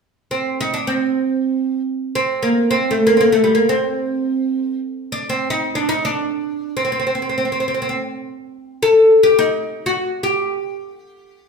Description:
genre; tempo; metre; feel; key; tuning
turkish; free time; none; none; C makam nikriz; A4 = 441 Hz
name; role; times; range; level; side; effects
oud; melody; 0.3-11.5 s; G3 to A4; -16 LUFS; equal; none
room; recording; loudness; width
wet large studio reverb, RT60 1.1 s; band playing live in one room; -16 LUFS; side -5 dB against mid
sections
0.0-11.5 A section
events
none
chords
none

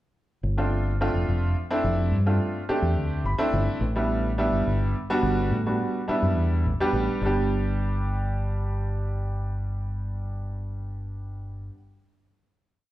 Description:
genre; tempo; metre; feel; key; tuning
jazz; 71 BPM (dotted quarters); 6/8; straight; G mixolydian; A4 = 440 Hz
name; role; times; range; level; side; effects
fingered electric bass; bass; 0.4-11.7 s; F1 to A2; -26 LUFS; equal; none
clear grand piano; accompaniment; 0.6-11.7 s; G3 to B5; -27 LUFS; right 1 dB; none
room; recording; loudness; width
moderate large studio reverb, RT60 1.3 s; band playing live in one room; -23 LUFS; side -15 dB against mid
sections
0.4-7.2 groove; 7.2-10.6 final chord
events
grand piano fill 3.0-3.8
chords
0.4 G9sus4; 3.8 A9sus4; 7.2 G

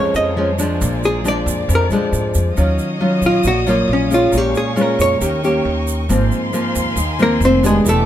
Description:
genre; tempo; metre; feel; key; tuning
bossa nova; 136 BPM; 4/4; straight; unclear; A4 = 439 Hz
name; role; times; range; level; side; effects
archtop guitar, miked and amplified; melody; 0.0-8.1 s; Ab3 to Eb5; -17 LUFS; equal; none
nylon-string guitar; accompaniment; 0.0-8.1 s; F2 to G4; -18 LUFS; equal; none
warm studio violin section; sustained chords; 0.0-8.1 s; Bb3 to Eb6; -26 LUFS; left 1 dB; none
upright bass; bass; 0.0-8.1 s; E1 to Bb2; -20 LUFS; equal; none
egg shaker; percussion; 0.1-8.1 s; none; -30 LUFS; right 6 dB; none
room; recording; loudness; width
light reverb; minimal, uncompressed stereo recording; -14 LUFS; side -11 dB against mid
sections
0.0-2.6 A section; 2.6-8.1 A section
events
hollow-body jazz guitar solo 0.0-2.6, 2.6-8.1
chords
0.0 Bbm7; 0.8 Bb7; 2.6 Ebm9; 4.3 Bbm7; 5.2 Eb7; 6.1 Ab69

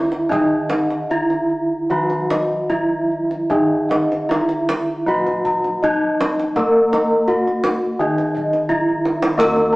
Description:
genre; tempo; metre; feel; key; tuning
Javanese gamelan; 75-88 BPM; 4/4; straight; unclear; A4 = 439 Hz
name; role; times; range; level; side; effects
gamelan-type bronze metallophone; melody; 0.0-9.8 s; Eb4 to Bb4-30c; -19 LUFS; equal; none
gamelan-type bronze metallophone; accompaniment; 0.0-9.8 s; Eb3 to Bb3-30c; -25 LUFS; equal; none
gamelan-type bronze metallophone; arpeggios; 0.0-9.8 s; Eb5 to Bb5-30c; -26 LUFS; right 1 dB; none
gamelan-type bossed gongs; bass; 0.0-9.8 s; Eb2 to Bb4-30c; -24 LUFS; equal; none
kendang; percussion; 0.1-9.6 s; none; -25 LUFS; right 1 dB; none
gamelan-type bossed gongs; arpeggios; 0.3-9.8 s; Eb5 to Bb5-30c; -26 LUFS; left 1 dB; none
room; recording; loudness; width
wet stone room reverb, RT60 1.0 s; band playing live in one room, small speaker sound; -16 LUFS; side -21 dB against mid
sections
0.0-9.4 A section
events
drum fill 8.9-9.4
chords
none

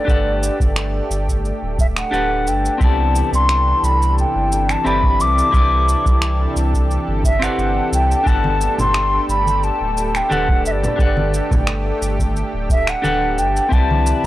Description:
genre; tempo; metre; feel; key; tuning
sunset chillout; 88 BPM; 4/4; swing 53% on 16ths; G major; A4 = 441 Hz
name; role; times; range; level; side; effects
mellow wooden flute; melody; 0.0-14.3 s; D5 to D6; -20 LUFS; equal; tape echo
clean electric guitar; accompaniment; 0.0-14.3 s; B3 to F#5; -25 LUFS; moving between left 5 dB and right 3 dB; auto-pan
lush unison pad; sustained chords; 0.0-14.3 s; C3 to B4; -25 LUFS; equal; chorus
warm sub bass; bass; 0.1-14.3 s; D1 to C2; -20 LUFS; equal; none
electronic kick drum; drums; 0.1-13.9 s; none; -16 LUFS; equal; none
electronic shaker and finger snaps; drums; 0.1-14.2 s; none; -25 LUFS; right 1 dB; none
congas; percussion; 8.4-14.3 s; none; -26 LUFS; left 1 dB; none
room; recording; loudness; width
little or no reverb; dry, gritty hardware recording, transformer saturation; -15 LUFS; side -15 dB against mid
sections
0.0-14.3 A section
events
none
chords
0.0 Gmaj9; 2.8 Cmaj9; 8.3 Gmaj9; 13.7 Cmaj9

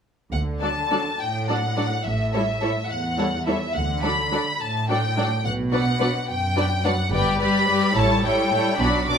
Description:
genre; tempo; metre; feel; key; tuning
quick classical-period movement for string orchestra; 71 BPM (dotted quarters); 6/8; rubato; D major; A4 = 440 Hz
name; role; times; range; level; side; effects
warm symphonic violin section; melody; 0.3-9.2 s; E5 to D6; -25 LUFS; left 2 dB; none
rich symphonic cello section; bass; 0.3-9.1 s; E2 to D3; -26 LUFS; right 2 dB; none
rich symphonic double bass section; bass; 0.3-9.0 s; G1 to D2; -28 LUFS; right 2 dB; none
warm symphonic violin section; second line; 0.6-9.2 s; F#4 to D5; -27 LUFS; left 1 dB; none
warm symphonic viola section; accompaniment; 0.6-9.2 s; F#3 to G4; -26 LUFS; left 1 dB; none
room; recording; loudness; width
moderate large studio reverb, RT60 1.3 s; minimal, uncompressed stereo recording; -20 LUFS; side -7 dB against mid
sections
0.3-9.2 A section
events
none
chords
0.3 D; 2.1 A7(no3); 3.8 D; 5.5 Bm; 7.1 G; 8.0 A7

